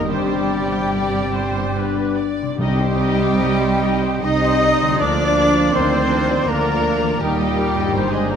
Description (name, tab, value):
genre	classical, slow romantic movement for symphony orchestra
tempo	67-84 BPM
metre	3/4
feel	rubato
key	C minor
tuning	A4 = 438 Hz
part	rich symphonic violin section	melody	0.0-8.4 s	G4 to Eb5	-30 LUFS	left 4 dB	none
part	warm symphonic violin section	second line	0.0-8.4 s	G4 to Eb5	-27 LUFS	left 1 dB	none
part	rich symphonic viola section	accompaniment	0.0-8.4 s	D4 to G5	-27 LUFS	equal	none
part	mellow French horn section	sustained chords	0.0-8.4 s	Bb2 to G3	-28 LUFS	left 4 dB	none
part	warm trombone section	sustained chords	0.0-8.4 s	Eb3 to C4	-26 LUFS	right 4 dB	none
part	concert harp	arpeggios	0.0-8.4 s	G2 to C5	-26 LUFS	left 8 dB	none
part	dark trumpet section	stabs	0.0-8.4 s	C5 to Eb5	-28 LUFS	right 2 dB	none
part	dark symphonic cello section	bass	0.0-8.4 s	G3 to Eb4	-24 LUFS	right 2 dB	none
part	rich symphonic double bass section	bass	0.0-8.4 s	G1 to Eb2	-25 LUFS	right 3 dB	none
part	bright concert flute	second line	0.1-8.4 s	G5 to Eb6	-25 LUFS	left 2 dB	none
part	dark clarinet	second line	0.1-8.4 s	G4 to Eb5	-28 LUFS	left 2 dB	none
part	mellow cor anglais	second line	0.1-8.4 s	G3 to Eb4	-28 LUFS	right 1 dB	none
part	timpani	percussion	2.6-3.8 s	C3	-28 LUFS	left 2 dB	none
room	wet scoring stage reverb, RT60 1.6 s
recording	none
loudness	-16 LUFS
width	side -7 dB against mid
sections	0.0-8.4 A section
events	none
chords	0.1 Gsus4; 1.8 G; 2.6 Cm; 5.0 Bb/D; 7.2 Eb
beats	| 0.09 0.92 1.76 | 2.59 3.38 4.23 | 4.99 5.75 6.48 | 7.21 7.93